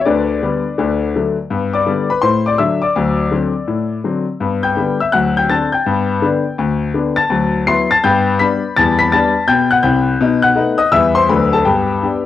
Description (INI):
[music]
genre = jazz, stride piano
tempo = 165 BPM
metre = 4/4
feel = swing 65% on 8ths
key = G major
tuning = A4 = 440 Hz
[part]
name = clear grand piano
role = solo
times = 0.0-12.3 s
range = C2 to C7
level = -13 LUFS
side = left 4 dB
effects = none
[sound]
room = moderate small room reverb, RT60 0.5 s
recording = home recording on cassette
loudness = -13 LUFS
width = side -12 dB against mid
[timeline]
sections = 0.0-1.5 A section; 1.5-12.3 B section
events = none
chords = 0.0 G/D; 0.8 D; 1.5 G; 2.2 D7/A; 3.0 D7; 4.4 G; 5.1 D7; 5.9 G; 7.3 D13; 8.0 G; 8.8 Em7; 10.2 B7; 10.9 Em; 11.3 D; 11.7 G